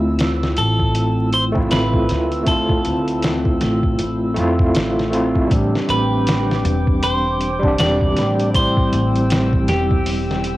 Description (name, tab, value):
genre	trip hop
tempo	79 BPM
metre	4/4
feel	swing 60% on 16ths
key	unclear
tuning	A4 = 438 Hz
part	overdriven tine electric piano	accompaniment	0.0-10.6 s	G3 to G4	-20 LUFS	equal	medium tremolo, cassette tape, tape echo
part	warbly tape-like pad	sustained chords	0.0-10.6 s	C4 to E6	-27 LUFS	left 1 dB	chorus, built-in reverb, cassette tape
part	upright bass	bass	0.0-10.6 s	E1 to F2	-22 LUFS	equal	none
part	dusty soul sampler-style drum kit	drums	0.2-10.6 s	hi-hat, kick drum, snare drum	-21 LUFS	equal	cassette tape
part	clean electric guitar	melody	0.6-10.6 s	G4 to D5	-22 LUFS	right 1 dB	vintage 12-bit sampler grit, cassette tape, tape echo
room	moderate booth ambience, RT60 0.2 s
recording	home recording on cassette, vinyl crackle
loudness	-15 LUFS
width	side -16 dB against mid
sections	0.0-5.5 A section; 5.5-10.6 B section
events	none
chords	0.0 Dm9; 5.5 Gsus4; 8.5 C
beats	0.19 0.95 1.71 | 2.47 3.23 3.99 4.75 | 5.51 6.27 7.03 7.79 | 8.54 9.30 10.06